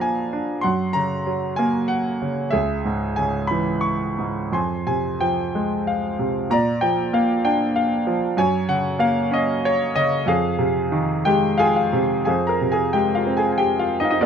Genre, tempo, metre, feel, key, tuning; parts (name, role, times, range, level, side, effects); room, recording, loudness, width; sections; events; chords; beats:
classical, lyrical solo piano; 87-98 BPM; 3/4; rubato; A4 = 442 Hz
bright concert grand piano; solo; 0.0-14.3 s; Db2 to Db6; -19 LUFS; equal
light reverb; dark, warm production; -19 LUFS; side -7 dB against mid
0.0-12.3 A section; 12.3-14.3 B section
grand piano fill 11.3-12.3
0.0 Bb; 0.6 Gb; 2.5 Dbm; 4.5 Fm; 6.5 Bb; 8.4 Gb; 10.3 Fm7; 12.3 Fm
0.02 | 0.63 1.26 1.90 | 2.53 3.17 3.84 | 4.53 5.21 5.87 | 6.51 7.14 7.77 | 8.38 9.00 9.63 | 10.27 10.92 11.59 | 12.27 12.94 13.59 | 14.22